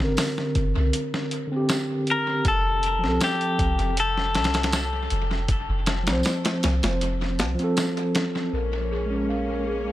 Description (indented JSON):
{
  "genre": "trip hop",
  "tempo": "79 BPM",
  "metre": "4/4",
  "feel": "straight",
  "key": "unclear",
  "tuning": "A4 = 440 Hz",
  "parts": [
    { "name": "mellow tine electric piano", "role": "accompaniment", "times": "0.0-9.9 s", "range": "D3 to C5", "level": "-27 LUFS", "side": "equal", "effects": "tremolo, tape echo" },
    { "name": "soft 808-style bass", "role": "bass", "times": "0.0-9.9 s", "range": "F1 to C2", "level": "-26 LUFS", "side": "equal", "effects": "none" },
    { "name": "dusty soul sampler-style drum kit", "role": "drums", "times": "0.0-8.5 s", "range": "hi-hat, kick drum, snare drum", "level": "-27 LUFS", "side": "equal", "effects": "studio ambience, dub echo" },
    { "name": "tambourine", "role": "percussion", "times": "0.2-7.9 s", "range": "none", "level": "-37 LUFS", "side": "right 4 dB", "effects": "none" },
    { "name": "clean electric guitar", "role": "melody", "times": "2.1-7.7 s", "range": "G4 to Bb4", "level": "-26 LUFS", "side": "left 3 dB", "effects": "vintage 12-bit sampler grit, tape echo" },
    { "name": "clear symphonic string section", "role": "sustained chords", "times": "8.5-9.9 s", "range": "Ab3 to Db4", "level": "-33 LUFS", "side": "equal", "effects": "none" },
    { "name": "large celesta", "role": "arpeggios", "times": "8.5-9.9 s", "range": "Ab4 to F5", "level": "-30 LUFS", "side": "left 1 dB", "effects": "low-pass filter, dub echo" }
  ],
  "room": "light reverb, small room ambience",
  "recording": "echo-heavy mix",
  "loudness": "-22 LUFS",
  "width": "side -14 dB against mid",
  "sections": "0.0-8.5 A section; 8.5-9.9 B section",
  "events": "filter sweep on celesta 8.5-9.9",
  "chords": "0.0 Csus2; 2.5 F; 8.5 Bbm7",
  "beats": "0.17 0.93 1.69 | 2.45 3.21 3.97 4.73 | 5.49 6.25 7.01 7.77 | 8.53 9.29"
}